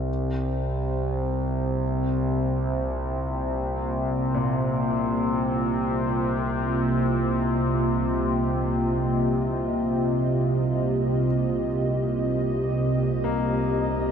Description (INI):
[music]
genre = dark ambient drone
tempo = free time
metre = none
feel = none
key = unclear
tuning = A4 = 440 Hz
[part]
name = analog drone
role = drone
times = 0.0-14.1 s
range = C2 to C3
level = -25 LUFS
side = equal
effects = chorus
[part]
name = dark analog pad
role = sustained chords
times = 2.7-14.1 s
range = C3 to Eb5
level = -26 LUFS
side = right 1 dB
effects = chorus, shimmer reverb
[part]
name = clear concert grand piano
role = arpeggios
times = 4.3-14.1 s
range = Bb2 to Bb3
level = -33 LUFS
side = left 4 dB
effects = diffuse ambient delay, shimmer reverb
[sound]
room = wet huge ambient reverb, RT60 7.4 s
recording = in a vast, echoing space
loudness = -22 LUFS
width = side -7 dB against mid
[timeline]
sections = 0.0-14.1 A section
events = none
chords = 0.1 Ebadd9/C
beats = free time